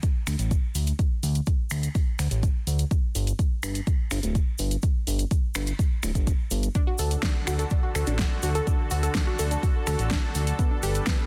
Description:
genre	progressive house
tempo	125 BPM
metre	4/4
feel	straight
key	D major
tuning	A4 = 440 Hz
part	deep house drum kit	drums	0.0-11.2 s	finger snaps, hi-hat, snare drum	-36 LUFS	equal	overdrive
part	electronic kick drum	drums	0.0-11.2 s	none	-26 LUFS	equal	none
part	cabasa	percussion	0.0-11.2 s	none	-41 LUFS	equal	none
part	fat analog bass	bass	0.3-11.0 s	D1 to D2	-28 LUFS	equal	sidechain pumping
part	supersaw pad	sustained chords	6.8-11.3 s	D3 to B4	-36 LUFS	equal	sidechain pumping
part	unison pluck	arpeggios	6.8-11.1 s	B3 to A4	-35 LUFS	equal	sidechain pumping, dub echo
room	little or no reverb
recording	dense, heavily limited modern master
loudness	-26 LUFS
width	mono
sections	0.0-11.3 A section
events	none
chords	0.0 D5; 2.9 G5; 6.8 D; 10.6 Gadd9

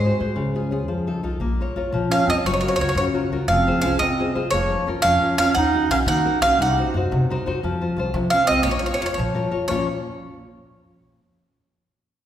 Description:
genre	italian folk, Italian serenade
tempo	116 BPM (dotted quarters)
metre	6/8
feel	straight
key	Bb harmonic minor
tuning	A4 = 438 Hz
part	bowl-back mandolin	melody	0.0-9.9 s	C5 to Gb5	-21 LUFS	right 1 dB	none
part	mellow clarinet	second line	0.0-9.9 s	Ab3 to Eb4	-26 LUFS	right 4 dB	none
part	nylon-string guitar	accompaniment	0.0-9.9 s	Bb2 to Db5	-25 LUFS	left 3 dB	none
part	upright bass	bass	0.0-9.9 s	F1 to F3	-26 LUFS	equal	none
room	wet recital hall reverb, RT60 1.8 s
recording	recorded in a church or concert hall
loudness	-18 LUFS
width	side -10 dB against mid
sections	0.0-1.4 A section; 1.4-9.7 B section; 9.7-10.7 C section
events	nylon-string guitar fill 7.1-7.6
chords	0.4 Db; 0.9 F7; 1.4 Bbm; 2.4 Gbmaj7; 3.5 Fm; 4.5 Bbm/F; 5.5 Ebm; 6.6 Cdim; 7.6 F; 8.7 Bbm

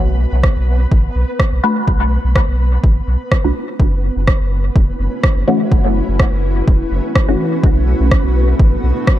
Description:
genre	dub techno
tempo	125 BPM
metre	4/4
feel	swing 54% on 16ths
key	unclear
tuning	A4 = 441 Hz
part	warm sub bass	bass	0.0-8.9 s	E1 to B1	-16 LUFS	equal	tube saturation, sidechain pumping
part	flickering grainy texture	texture	0.0-9.2 s	B3 to B4	-27 LUFS	equal	built-in reverb, sidechain pumping
part	electronic kick drum	drums	0.4-9.2 s	none	-13 LUFS	equal	none
part	electronic rim click	drums	0.4-9.2 s	none	-22 LUFS	right 1 dB	dub echo
part	filtered dub chord stab	stabs	1.6-7.6 s	E3 to B4	-20 LUFS	left 1 dB	phaser, sidechain pumping, dub echo
part	granular cloud pad	sustained chords	5.0-9.2 s	A3 to F#4	-22 LUFS	equal	built-in reverb, sidechain pumping
room	light reverb, digital ambience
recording	dark, warm production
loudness	-12 LUFS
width	side -13 dB against mid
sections	0.0-9.2 A section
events	filter sweep on synth stab 0.0-9.2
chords	0.0 Bm7; 3.8 F#m7; 7.6 Bm7

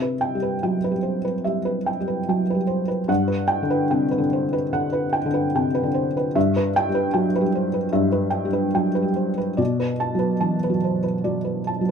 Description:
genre	neoclassical minimalist piano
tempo	73 BPM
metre	4/4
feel	rubato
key	E minor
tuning	A4 = 440 Hz
part	felt-muted upright piano	solo	0.0-11.9 s	G2 to A5	-20 LUFS	equal	none
room	moderate studio reverb, RT60 0.5 s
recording	minimal, uncompressed stereo recording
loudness	-20 LUFS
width	side -7 dB against mid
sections	0.0-11.9 A section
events	none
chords	0.0 Cmaj7; 3.1 Gmaj7; 6.4 Em/G; 9.6 Bm7

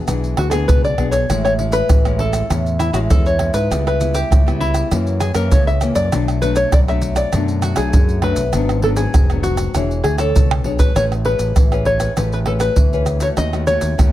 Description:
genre	samba and choro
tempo	99 BPM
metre	4/4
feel	straight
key	A major from 11.0 s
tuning	A4 = 440 Hz
part	open-back banjo	melody	0.0-14.1 s	E4 to E5	-20 LUFS	left 1 dB	none
part	nylon-string guitar	accompaniment	0.0-14.1 s	F#2 to C#5	-23 LUFS	left 4 dB	none
part	overdriven fingered electric bass	bass	0.1-14.1 s	E1 to G#2	-20 LUFS	equal	none
part	maracas, surdo, pandeiro and tamborim	percussion	0.1-14.1 s	none	-17 LUFS	right 1 dB	none
room	little or no reverb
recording	close, detailed microphones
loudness	-14 LUFS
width	side -14 dB against mid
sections	0.0-11.0 A section; 11.0-14.1 B section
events	drum fill 10.5-11.0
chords	0.0 E7; 1.3 Amaj7; 3.7 C#m7b5; 4.9 F#7; 6.1 Bm7; 8.5 G#m7b5; 9.8 E13; 11.0 Amaj9; 13.4 D#m7b5

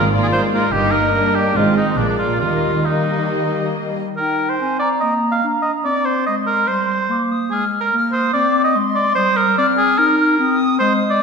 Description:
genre	quick classical-period movement for symphony orchestra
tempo	145 BPM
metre	4/4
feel	rubato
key	Eb major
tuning	A4 = 438 Hz
part	muted studio violin section	melody	0.0-3.9 s	D5 to Eb5	-26 LUFS	left 5 dB	none
part	clear oboe	second line	0.0-11.2 s	D4 to F5	-18 LUFS	right 2 dB	none
part	muted studio violin section	second line	0.0-3.9 s	Bb3 to F4	-24 LUFS	left 2 dB	none
part	muted studio viola section	accompaniment	0.0-3.9 s	G3 to Bb3	-22 LUFS	right 2 dB	none
part	muted studio cello section	bass	0.0-4.0 s	G2 to Eb3	-24 LUFS	right 1 dB	none
part	muted studio double bass section	bass	0.0-2.8 s	G1 to Eb2	-23 LUFS	right 4 dB	none
part	concert flute	second line	4.2-11.2 s	G5 to F6	-22 LUFS	left 2 dB	none
part	dark clarinet	second line	4.2-11.2 s	G3 to Eb4	-20 LUFS	left 2 dB	none
room	wet scoring stage reverb, RT60 1.6 s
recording	minimal, uncompressed stereo recording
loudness	-15 LUFS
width	side -5 dB against mid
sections	0.0-4.2 A section; 4.2-11.2 B section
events	none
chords	0.0 Bb7/Ab; 0.7 Eb/G; 1.6 Ab; 2.0 Bb7; 2.4 Eb; 5.8 C5; 7.5 Fm/Ab; 9.2 Eb/G

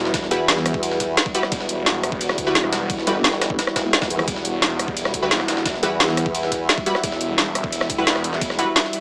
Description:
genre	dark technical drum and bass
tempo	174 BPM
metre	4/4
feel	straight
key	E minor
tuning	A4 = 437 Hz
part	deep dark ambient pad	sustained chords	0.0-9.0 s	G3 to E5	-29 LUFS	equal	chorus, built-in reverb, sidechain pumping
part	orchestra-hit-like synth stab	stabs	0.0-3.2, 5.2-8.7 s	G3 to B4	-28 LUFS	equal	built-in reverb, dub echo
part	snarling distorted saw bass	bass	0.0-8.6 s	E1 to D2	-30 LUFS	equal	distortion, overdrive, sidechain pumping
part	drum and bass drum kit	drums	0.1-9.0 s	hi-hat, rim click, snare drum	-22 LUFS	equal	overdrive
part	electronic kick drum	drums	0.1-8.5 s	none	-32 LUFS	equal	overdrive
part	jungle sampler-style drum kit	drums	0.1-9.0 s	ride cymbal, snare drum	-31 LUFS	equal	high-pass filter on cymbals, high-pass filter on snare
part	formant-sweep wobble bass	bass	0.3-6.7 s	E1 to E2	-25 LUFS	equal	chorus
room	light reverb, digital ambience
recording	small speaker sound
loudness	-21 LUFS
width	mono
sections	0.0-9.0 A section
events	none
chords	0.0 Emadd9

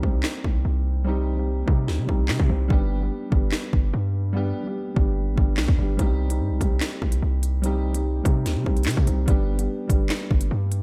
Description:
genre	hip hop, drill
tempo	146 BPM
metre	4/4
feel	half-time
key	C harmonic minor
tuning	A4 = 440 Hz
part	dark concert grand piano	accompaniment	0.0-10.8 s	G3 to G4	-31 LUFS	equal	low-pass filter
part	hard-hitting 808-style bass	bass	0.0-10.8 s	G1 to C3	-26 LUFS	equal	none
part	drill drum kit	drums	0.0-10.8 s	handclaps, hi-hat, kick drum, snare drum	-25 LUFS	equal	none
room	light reverb, studio reverb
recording	none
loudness	-23 LUFS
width	mono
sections	0.0-10.8 A section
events	break 0.0-6.0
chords	0.0 Cm; 2.7 G; 6.0 Cm; 9.3 G

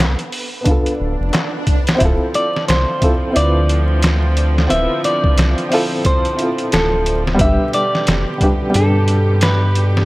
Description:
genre	trip hop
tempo	89 BPM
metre	4/4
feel	swing 59% on 16ths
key	D dorian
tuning	A4 = 439 Hz
part	dark upright piano	accompaniment	0.0-10.1 s	G3 to B4	-21 LUFS	equal	tremolo
part	round analog bass	bass	0.0-10.1 s	D1 to G2	-16 LUFS	equal	none
part	trip hop sampler-style drum kit	drums	0.0-10.1 s	hi-hat, kick drum, snare drum	-18 LUFS	equal	none
part	wind-like tuned noise texture	texture	0.1-2.0 s	B3 to B4	-35 LUFS	right 2 dB	none
part	swell	sound effects	0.9-2.0 s	none	-28 LUFS	right 2 dB	none
part	darbuka	percussion	1.3-1.5 s	none	-28 LUFS	left 2 dB	none
part	rich studio string section	sustained chords	2.0-10.1 s	B2 to G4	-24 LUFS	right 1 dB	none
part	semi-hollow electric guitar	melody	2.4-9.9 s	A4 to E5	-20 LUFS	equal	tape echo
room	little or no reverb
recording	vinyl crackle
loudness	-13 LUFS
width	side -20 dB against mid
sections	0.0-2.0 A section; 2.0-10.1 B section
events	swell 0.9-2.0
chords	0.0 Am11; 0.7 Dm6; 2.0 Dm7; 7.4 G

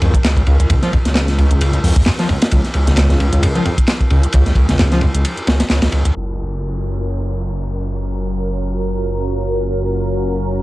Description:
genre	breakbeat, breaks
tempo	132 BPM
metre	4/4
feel	swing 55% on 16ths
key	unclear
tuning	A4 = 440 Hz
part	overdriven acid bass	riff	0.0-6.1 s	Cb2 to F3	-16 LUFS	equal	distortion, lush chorus, tape echo
part	dark detuned saw bass	bass	0.0-10.6 s	Gb1 to F2	-18 LUFS	equal	none
part	crunchy breakbeat drum kit	drums	0.0-6.0 s	hi-hat, kick drum, ride cymbal, snare drum	-17 LUFS	equal	none
part	garage drum kit	drums	0.1-6.1 s	handclaps, hi-hat	-26 LUFS	equal	none
part	lush unison pad	sustained chords	6.2-10.6 s	Gb3 to Bb4	-22 LUFS	equal	chorus, phaser, sidechain pumping
part	downlifter	sound effects	6.2-9.8 s	none	-40 LUFS	equal	none
room	studio ambience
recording	dry, gritty hardware recording, cassette tape, low-pass filter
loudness	-14 LUFS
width	side -18 dB against mid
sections	0.0-6.2 A section; 6.2-10.6 B section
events	break 5.2-6.2; filter sweep 6.2-10.6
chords	0.0 Db; 6.2 Gbmaj7

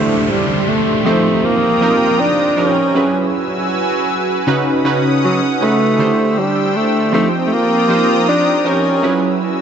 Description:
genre	R&B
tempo	79 BPM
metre	4/4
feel	swing 58% on 16ths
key	unclear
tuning	A4 = 440 Hz
part	mellow alto saxophone	melody	0.0-9.4 s	Gb3 to D4	-16 LUFS	equal	ping-pong delay
part	warm analog keys	accompaniment	0.0-9.6 s	Db3 to C5	-17 LUFS	right 2 dB	chorus
part	lush unison pad	sustained chords	0.0-9.6 s	Db4 to Fb6	-20 LUFS	left 1 dB	chorus
part	downlifter	sound effects	0.0-6.0 s	none	-24 LUFS	right 1 dB	none
room	light reverb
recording	nothing above 8.0 kHz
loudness	-12 LUFS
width	side -8 dB against mid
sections	0.0-9.6 A section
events	none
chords	0.0 D9sus4; 1.0 F9sus4; 2.9 Gb9sus4; 4.5 Db9sus4; 6.0 D9sus4; 7.1 F9sus4; 9.0 Gb9sus4

